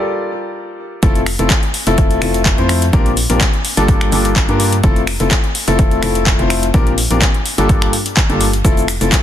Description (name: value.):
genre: piano house.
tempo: 126 BPM.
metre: 4/4.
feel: swing 53% on 16ths.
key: F major.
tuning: A4 = 440 Hz.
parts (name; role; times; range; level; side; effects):
clear grand piano; riff; 0.0-9.2 s; G2 to D5; -17 LUFS; left 2 dB; sidechain pumping, ping-pong delay.
organ-like FM bass; bass; 1.0-9.1 s; F1 to G2; -18 LUFS; equal; tube saturation, sidechain pumping.
electronic kick drum; drums; 1.0-9.2 s; none; -14 LUFS; equal; overdrive.
garage drum kit; drums; 1.0-9.2 s; finger snaps, handclaps, hi-hat, shaker; -19 LUFS; left 1 dB; soft clipping on snare.
room: little or no reverb.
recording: dense, heavily limited modern master, lossy compression artefacts.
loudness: -12 LUFS.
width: side -11 dB against mid.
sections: 0.0-1.0 A section; 1.0-9.2 B section.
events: break 0.0-1.0; drop 1.0-9.2.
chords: 0.0 Gm9; 1.0 Fmaj7; 2.9 Bb69; 3.6 Gm9; 4.8 Fmaj7; 6.7 Bb69; 7.5 Gm9; 8.6 Fmaj7.